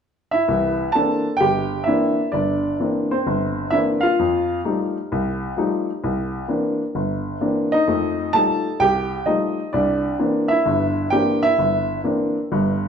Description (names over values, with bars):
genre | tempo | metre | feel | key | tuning
solo jazz | 130 BPM | 4/4 | swing 67% on 8ths | C mixolydian | A4 = 440 Hz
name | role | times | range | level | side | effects
warm baby grand piano | solo | 0.3-12.9 s | G1 to A5 | -18 LUFS | equal | none
room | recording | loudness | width
wet large studio reverb, RT60 0.9 s | band playing live in one room | -18 LUFS | side -7 dB against mid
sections
0.5-12.9 A section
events
none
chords
0.5 C9; 4.2 F9; 6.0 C9; 7.9 F9; 9.7 C9